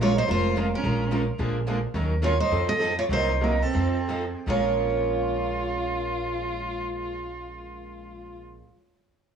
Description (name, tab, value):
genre	acoustic string swing (jazz manouche)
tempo	152-218 BPM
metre	4/4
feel	swing 57% on 8ths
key	Bb minor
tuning	A4 = 444 Hz
part	picked steel-string acoustic guitar	melody	0.0-8.6 s	A4 to Eb5	-28 LUFS	right 3 dB	plate reverb, tape echo
part	warm violin	second line	0.0-8.4 s	C4 to A4	-30 LUFS	right 3 dB	none
part	picked steel-string acoustic guitar	accompaniment	0.0-8.7 s	Bb2 to Bb4	-30 LUFS	left 2 dB	none
part	picked steel-string acoustic guitar	accompaniment	0.0-8.7 s	Bb2 to Bb4	-34 LUFS	right 7 dB	none
part	upright bass	bass	0.0-8.6 s	F1 to F2	-29 LUFS	equal	none
room	moderate club reverb, RT60 0.7 s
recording	worn, warbling old tape, cassette tape, warbly pitch drift, small room ambience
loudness	-23 LUFS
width	side -7 dB against mid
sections	0.0-1.9 A section; 1.9-4.5 B section; 4.5-7.6 C section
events	slowing down 1.9-4.5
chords	0.0 Bbm7; 1.4 Bb7; 1.9 Ebm7; 2.5 F7; 3.1 Cm7b5; 3.7 F7; 4.5 Bbm7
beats	0.01 0.29 0.56 | 0.84 1.12 1.39 1.67 | 1.94 2.22 2.50 2.79 | 3.09 3.41 3.74 4.09 | 4.47 4.87 5.26 5.66 | 6.05 6.45 6.84 7.24